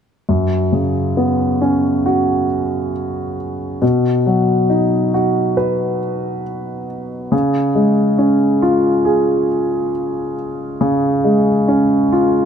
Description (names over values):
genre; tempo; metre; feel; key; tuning
pop; 68 BPM; 4/4; straight; unclear; A4 = 441 Hz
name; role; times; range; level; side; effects
warm concert grand piano; accompaniment; 0.3-12.5 s; F#2 to B4; -14 LUFS; equal; none
room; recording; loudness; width
moderate lush hall reverb, RT60 2.5 s; none; -14 LUFS; side -8 dB against mid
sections
0.3-12.5 A section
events
none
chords
0.3 F#sus4; 3.8 B; 7.3 C#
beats
| 0.29 1.18 2.06 2.94 | 3.82 4.70 5.58 6.45 | 7.33 8.20 9.07 9.94 | 10.82 11.70